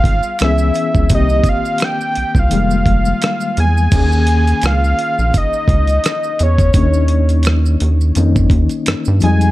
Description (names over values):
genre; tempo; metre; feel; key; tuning
R&B, neo-soul; 85 BPM; 4/4; swing 56% on 16ths; unclear; A4 = 440 Hz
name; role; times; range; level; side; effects
fat analog lead; melody; 0.0-9.5 s; Db5 to Ab5; -19 LUFS; equal; none
overdriven reed electric piano; accompaniment; 0.0-9.5 s; Eb3 to Ab4; -20 LUFS; left 5 dB; fast tremolo
rubbery square bass; bass; 0.0-9.5 s; F1 to G2; -14 LUFS; equal; none
dusty soul sampler-style drum kit; drums; 0.0-9.5 s; crash cymbal, hi-hat, kick drum, rim click; -17 LUFS; equal; overdrive
maracas and finger snaps; percussion; 0.2-9.5 s; none; -30 LUFS; right 6 dB; none
room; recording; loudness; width
digital ambience; dark, warm production; -12 LUFS; side -16 dB against mid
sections
0.0-3.9 A section; 3.9-9.5 B section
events
none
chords
0.4 Dbm7; 1.1 Cm7; 2.5 Fm11; 3.9 Eb7sus4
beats
0.40 | 1.10 1.81 2.51 3.22 | 3.93 4.63 5.34 6.04 | 6.75 7.46 8.16 8.87